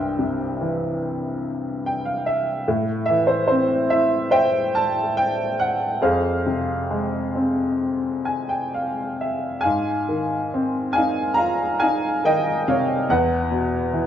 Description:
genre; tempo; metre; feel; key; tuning
classical, lyrical solo piano; 63-73 BPM; 4/4; rubato; F harmonic minor, Ab major from 9.6 s; A4 = 440 Hz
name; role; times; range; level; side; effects
clear upright piano; solo; 0.0-14.1 s; C2 to Bb5; -20 LUFS; equal; none
room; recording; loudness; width
moderate recital hall reverb, RT60 1.3 s; dark, warm production, lossy compression artefacts; -20 LUFS; side -10 dB against mid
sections
0.0-9.6 A section; 9.6-14.1 B section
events
upright piano fill 1.4-2.7, 7.8-9.6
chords
0.0 C; 2.7 Am; 6.0 Fm; 9.6 Ab6; 13.1 E5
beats
0.17 1.00 1.84 | 2.66 3.48 4.31 5.15 | 6.00 6.88 7.78 8.71 | 9.63 10.51 11.38 12.24 | 13.10 13.95

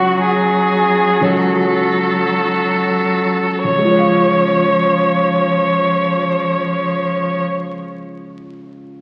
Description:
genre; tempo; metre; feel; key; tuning
classical, slow romantic movement for piano trio; 45-61 BPM; 4/4; rubato; Db major; A4 = 440 Hz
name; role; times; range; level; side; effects
clear violin; melody; 0.0-7.4 s; Gb4 to Db5; -18 LUFS; equal; none
rich cello; second line; 0.0-7.4 s; F3 to Gb3; -22 LUFS; equal; none
dark baby grand piano; accompaniment; 0.0-9.0 s; Db2 to F5; -23 LUFS; equal; none
room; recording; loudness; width
wet concert hall reverb, RT60 2.4 s; very old 78 rpm record, vinyl crackle; -16 LUFS; mono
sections
0.0-3.6 A section; 3.6-8.3 B section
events
slowing down 0.0-3.6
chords
0.0 Gbm/Db; 3.6 Db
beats
0.20 1.23 2.38 | 3.64 4.79 5.93 7.11

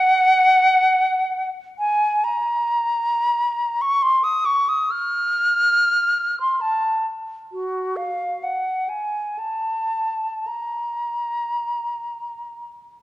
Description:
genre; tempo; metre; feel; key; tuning
classical, free, expressive piece for unaccompanied flute; 47-72 BPM; 3/4; rubato; Bb minor; A4 = 444 Hz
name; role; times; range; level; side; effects
mellow silver concert flute; solo; 0.0-12.7 s; Gb4 to F6; -18 LUFS; equal; none
room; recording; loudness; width
moderate recital hall reverb, RT60 1.9 s; worn, warbling old tape, cassette tape, warbly pitch drift; -18 LUFS; side -16 dB against mid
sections
0.0-13.0 A section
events
none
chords
none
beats
0.42 1.31 | 2.24 3.13 4.01 | 4.89 5.75 6.62 | 7.51 8.43 9.40 | 10.47 11.61

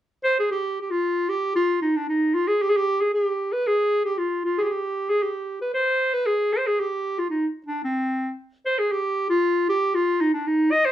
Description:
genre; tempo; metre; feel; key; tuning
klezmer; 114 BPM; 2/4; straight; unclear; A4 = 440 Hz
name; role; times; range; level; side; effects
clear clarinet; solo; 0.2-10.9 s; C4 to Eb5; -21 LUFS; equal; none
room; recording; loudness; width
wet small room reverb, RT60 0.6 s; band playing live in one room; -21 LUFS; side -12 dB against mid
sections
0.5-8.9 A section; 8.9-10.9 A section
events
none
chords
none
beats
| 0.50 1.02 | 1.55 2.07 | 2.59 3.12 | 3.64 4.17 | 4.69 5.21 | 5.74 6.26 | 6.79 7.31 | 7.84 8.36 | 8.89 9.41 | 9.94 10.46

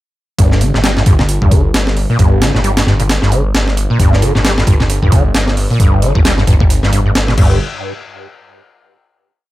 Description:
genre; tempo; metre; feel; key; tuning
breakbeat, breaks; 133 BPM; 4/4; swing 58% on 16ths; G minor; A4 = 442 Hz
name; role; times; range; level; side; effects
overdriven acid bass; riff; 0.4-7.6 s; G2 to G3; -14 LUFS; equal; distortion, ensemble chorus, cassette tape, digital delay
phased detuned saw bass; bass; 0.4-7.6 s; G1; -15 LUFS; equal; phaser
breakbeat sampler-style drum kit; drums; 0.4-7.5 s; crash cymbal, hi-hat, kick drum, snare drum; -13 LUFS; equal; small room ambience
room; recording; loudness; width
little or no reverb; none; -10 LUFS; side -16 dB against mid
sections
0.4-7.6 drop; 7.6-9.4 final hit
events
drop 0.4-7.6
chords
none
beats
| 0.39 0.84 1.29 1.74 | 2.19 2.64 3.09 3.54 | 4.00 4.45 4.90 5.35 | 5.80 6.25 6.70 7.15

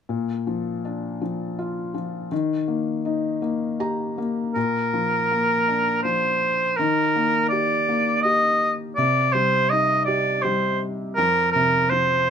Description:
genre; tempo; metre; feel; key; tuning
children's music, lullaby; 82 BPM; 3/4; rubato; Bb major; A4 = 439 Hz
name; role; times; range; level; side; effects
felt-muted upright piano; accompaniment; 0.1-12.3 s; F2 to Bb5; -24 LUFS; left 3 dB; none
clear oboe; melody; 4.5-12.3 s; Bb4 to Eb5; -19 LUFS; right 1 dB; none
room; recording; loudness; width
light reverb; minimal, uncompressed stereo recording; -20 LUFS; side -7 dB against mid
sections
0.1-4.6 A section; 4.6-12.3 B section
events
felt piano fill 3.4-4.6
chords
0.1 Bb; 2.3 Eb; 4.6 Bb; 6.8 Eb; 9.0 Cm; 11.2 Fsus4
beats
| 0.09 0.85 1.59 | 2.31 3.05 3.80 | 4.56 5.31 6.05 | 6.79 7.52 8.24 | 8.98 9.71 10.44 | 11.18 11.92

